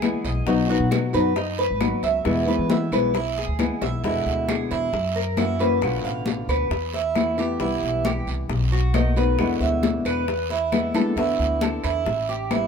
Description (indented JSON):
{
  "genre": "latin, Cuban son and guajira",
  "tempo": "135 BPM",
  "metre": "4/4",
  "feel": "straight",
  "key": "unclear",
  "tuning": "A4 = 439 Hz",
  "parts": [
    { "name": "nylon-string guitar", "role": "accompaniment", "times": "0.0-12.7 s", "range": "B2 to F#4", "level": "-25 LUFS", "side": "left 3 dB", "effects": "none" },
    { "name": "Cuban tres", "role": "arpeggios", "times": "0.0-12.7 s", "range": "D#4 to F5", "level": "-25 LUFS", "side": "right 3 dB", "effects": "none" },
    { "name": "upright bass", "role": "bass", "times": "0.0-12.7 s", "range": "G#1 to E3", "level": "-27 LUFS", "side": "equal", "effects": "none" },
    { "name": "bongos", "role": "percussion", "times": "0.0-12.7 s", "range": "none", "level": "-32 LUFS", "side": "left 8 dB", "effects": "none" },
    { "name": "claves", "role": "percussion", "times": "0.0-12.7 s", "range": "none", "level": "-38 LUFS", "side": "right 1 dB", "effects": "none" },
    { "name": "congas", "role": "percussion", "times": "0.0-12.7 s", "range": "none", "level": "-28 LUFS", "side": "left 5 dB", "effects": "none" },
    { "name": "guiro", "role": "percussion", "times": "0.0-12.7 s", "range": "none", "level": "-37 LUFS", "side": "right 7 dB", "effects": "none" }
  ],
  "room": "light reverb",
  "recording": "minimal, uncompressed stereo recording",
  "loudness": "-20 LUFS",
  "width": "side -6 dB against mid",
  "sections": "0.0-4.0 A section; 4.0-12.7 B section",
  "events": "drum fill 3.8, 11.0",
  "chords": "0.5 B; 2.3 E; 4.0 E7; 4.9 F#7; 5.8 Bm7b5; 6.7 Esus4; 7.6 Cmaj7; 8.5 B7; 9.4 E7; 11.2 E7sus4; 12.1 Am7",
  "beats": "0.03 | 0.47 0.92 1.36 1.81 | 2.26 2.70 3.15 3.60 | 4.04 4.49 4.93 5.38 | 5.83 6.27 6.72 7.16 | 7.61 8.05 8.50 8.95 | 9.39 9.84 10.28 10.73 | 11.18 11.62 12.07 12.51"
}